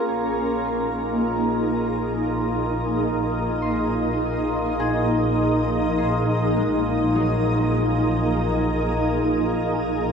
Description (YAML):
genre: ambient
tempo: 51 BPM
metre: 3/4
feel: straight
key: unclear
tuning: A4 = 440 Hz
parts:
  - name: shimmering ambient pad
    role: sustained chords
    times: 0.0-10.1 s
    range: Bb3 to Bb4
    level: -22 LUFS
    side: equal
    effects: chorus, built-in reverb, shimmer reverb
  - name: Celtic harp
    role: arpeggios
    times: 0.0-10.1 s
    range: Gb3 to C6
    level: -35 LUFS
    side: left 3 dB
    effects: none
  - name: dark studio double bass section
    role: bass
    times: 0.0-10.1 s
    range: Bb1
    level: -27 LUFS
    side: equal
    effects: none
  - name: overtone-sweeping drone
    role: drone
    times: 0.0-10.1 s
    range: Bb3 to F4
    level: -28 LUFS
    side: equal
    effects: chorus, built-in reverb
room: wet huge ambient reverb, RT60 8.1 s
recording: in a vast, echoing space, cassette tape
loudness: -20 LUFS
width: side -6 dB against mid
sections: 0.0-10.1 A section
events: filter sweep on ambient pad 0.0-10.1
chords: 0.0 Abadd9/Bb